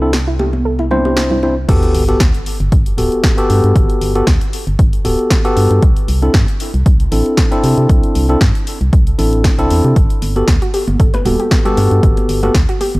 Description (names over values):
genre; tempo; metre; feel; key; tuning
deep house; 116 BPM; 4/4; swing 54% on 16ths; G major; A4 = 440 Hz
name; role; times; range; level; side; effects
tine electric piano; stabs; 0.0-12.5 s; B3 to C5; -17 LUFS; equal; sidechain pumping, analog delay
organ-like FM bass; bass; 0.0-13.0 s; D1 to C3; -15 LUFS; equal; sidechain pumping
punchy analog drum machine; drums; 0.1-13.0 s; crash cymbal, hi-hat, snare drum; -22 LUFS; equal; none
congas; percussion; 0.1-1.5, 10.2-13.0 s; none; -23 LUFS; right 1 dB; none
soft round pluck; arpeggios; 0.3-1.5, 10.6-12.9 s; E4 to B4; -22 LUFS; equal; chorus, sidechain pumping, analog delay
electronic kick drum; drums; 1.7-12.7 s; none; -13 LUFS; equal; none
sub drop; sound effects; 1.7-3.8 s; none; -21 LUFS; equal; none
room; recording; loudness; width
digital ambience; none; -11 LUFS; side -21 dB against mid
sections
0.0-1.7 A section; 1.7-13.0 B section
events
filter sweep on synth arpeggio sound 0.0-1.7; drop 1.7-13.0; impact 1.7-3.8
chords
0.0 C69; 1.7 Gmaj9; 5.8 C69; 10.0 Gmaj9